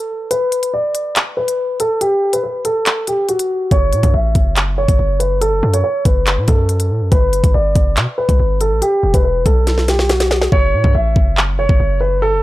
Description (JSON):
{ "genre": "hip hop, drill", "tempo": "141 BPM", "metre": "4/4", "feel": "half-time", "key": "F# phrygian", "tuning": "A4 = 444 Hz", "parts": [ { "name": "dark grand piano", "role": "melody", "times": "0.0-12.4 s", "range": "F#4 to E5", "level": "-17 LUFS", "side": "equal", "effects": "low-pass filter" }, { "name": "drill drum kit", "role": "drums", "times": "0.3-11.8 s", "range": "handclaps, hi-hat, kick drum, snare drum", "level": "-15 LUFS", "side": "equal", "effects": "none" }, { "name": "hard-hitting 808-style bass", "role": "bass", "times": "3.7-12.4 s", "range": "E1 to B2", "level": "-17 LUFS", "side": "equal", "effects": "none" } ], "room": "little or no reverb", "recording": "dry, gritty hardware recording, transformer saturation", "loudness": "-13 LUFS", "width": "side -16 dB against mid", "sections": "0.0-12.4 A section", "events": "break 0.0-3.7; filter sweep on grand piano 0.0-10.5; drum fill 9.7-10.5; hi-hats muted 10.5-12.4", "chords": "0.0 N.C.; 3.7 F#m; 7.1 G; 8.8 E5; 10.5 F#m7" }